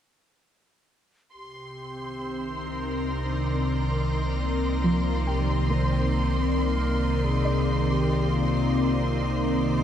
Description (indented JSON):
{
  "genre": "ambient",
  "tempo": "68 BPM",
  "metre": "3/4",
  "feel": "straight",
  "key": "C minor",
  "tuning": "A4 = 439 Hz",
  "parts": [
    { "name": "breathy wooden-headed alto flute", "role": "melody", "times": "1.3-9.8 s", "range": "D4 to C5", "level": "-37 LUFS", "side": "equal", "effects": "tape echo" },
    { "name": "soft additive organ-like pad", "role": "sustained chords", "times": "1.8-9.8 s", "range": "C3 to D5", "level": "-26 LUFS", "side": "left 1 dB", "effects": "ensemble chorus, built-in reverb" },
    { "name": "warm sub bass", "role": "bass", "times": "1.3-9.8 s", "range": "C2", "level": "-28 LUFS", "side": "equal", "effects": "none" },
    { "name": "analog drone", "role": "drone", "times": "2.0-9.8 s", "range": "C3 to Bb3", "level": "-32 LUFS", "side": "equal", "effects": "chorus" },
    { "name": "clear studio violin section", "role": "texture", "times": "1.3-9.8 s", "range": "C6", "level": "-34 LUFS", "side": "equal", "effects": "none" },
    { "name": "soft round pluck", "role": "arpeggios", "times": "4.8-9.8 s", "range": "F3 to G5", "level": "-32 LUFS", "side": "right 2 dB", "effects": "lush chorus, tape echo" }
  ],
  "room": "wet huge ambient reverb, RT60 7.5 s",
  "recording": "in a vast, echoing space, cassette tape",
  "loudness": "-23 LUFS",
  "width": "side -9 dB against mid",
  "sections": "1.3-9.8 A section",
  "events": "fade-in on alto flute 1.3-9.8",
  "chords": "1.3 Cm9"
}